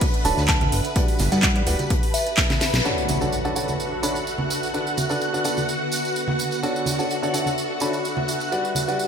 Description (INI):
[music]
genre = piano house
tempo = 127 BPM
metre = 4/4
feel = straight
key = D major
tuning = A4 = 439 Hz
[part]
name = string machine, violins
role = sustained chords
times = 0.0-9.1 s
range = F#4 to B5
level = -29 LUFS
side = equal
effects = ensemble chorus, sidechain pumping
[part]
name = electronic kick drum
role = drums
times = 0.0-2.5 s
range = none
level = -22 LUFS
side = equal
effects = small room ambience
[part]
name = house drum kit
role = drums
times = 0.0-9.1 s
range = handclaps, hi-hat, snare drum, tambourine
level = -27 LUFS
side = right 1 dB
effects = small room ambience
[part]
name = loose indie drum kit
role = drums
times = 0.0-2.8 s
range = hi-hat, snare drum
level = -34 LUFS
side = right 1 dB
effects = none
[part]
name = tambourine and congas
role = percussion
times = 0.0-9.1 s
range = none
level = -30 LUFS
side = right 3 dB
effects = none
[part]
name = ethereal airy pad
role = texture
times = 0.0-9.1 s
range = D3 to B5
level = -29 LUFS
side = left 1 dB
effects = ensemble chorus, built-in reverb, sidechain pumping
[part]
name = glassy synth bell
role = melody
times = 0.2-2.6 s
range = E5 to A5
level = -30 LUFS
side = right 1 dB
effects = chorus, ping-pong delay
[part]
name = clear baby grand piano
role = riff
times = 0.2-9.1 s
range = D3 to B5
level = -27 LUFS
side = equal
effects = vintage 12-bit sampler grit, sidechain pumping, ping-pong delay
[part]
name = fat analog bass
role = bass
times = 0.2-2.8 s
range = D1 to G2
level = -22 LUFS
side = equal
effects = sidechain pumping
[part]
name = impact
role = sound effects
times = 2.8-4.7 s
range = none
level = -32 LUFS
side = equal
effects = none
[sound]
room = moderate lush hall reverb, RT60 1.6 s, small room ambience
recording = bright 1980s-style digital production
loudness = -20 LUFS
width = side -7 dB against mid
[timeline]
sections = 0.0-2.8 A section; 2.8-9.1 B section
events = drum fill 2.4-2.8; band accent 2.7; impact 2.8-4.7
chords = 0.0 Dmaj7; 0.7 Gmaj7; 2.8 Dmaj7; 4.7 Bm7/D; 6.4 Dmaj7; 8.3 Gmaj7